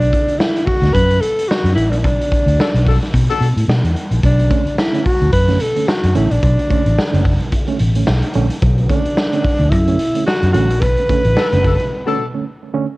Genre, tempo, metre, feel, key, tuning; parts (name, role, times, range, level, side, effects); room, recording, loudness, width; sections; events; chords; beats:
funk; 109 BPM; 4/4; swing 56% on 16ths; B minor; A4 = 440 Hz
breathy alto saxophone; melody; 0.0-12.5 s; D4 to B4; -18 LUFS; equal; cassette tape
vintage muted fingered electric bass; bass; 0.0-11.8 s; F#1 to B2; -15 LUFS; equal
raw garage drum kit; drums; 0.0-11.9 s; hi-hat, kick drum, snare drum; -18 LUFS; equal
mellow horn section; second line; 2.6-3.5, 11.4-12.2 s; D4 to A4; -22 LUFS; left 6 dB; cassette tape
reed electric piano; stabs; 4.2-12.9 s; B2 to C#4; -22 LUFS; right 5 dB; cassette tape, analog delay
small room ambience; home recording on cassette; -13 LUFS; side -21 dB against mid
0.0-13.0 A section
band accent 2.0-4.2, 10.8-13.0; break 11.9-13.0
0.0 Bm9
0.40 0.94 1.49 | 2.04 2.59 3.13 3.68 | 4.23 4.78 5.33 5.87 | 6.42 6.97 7.52 8.07 | 8.62 9.17 9.72 10.27 | 10.82 11.37 11.91 12.46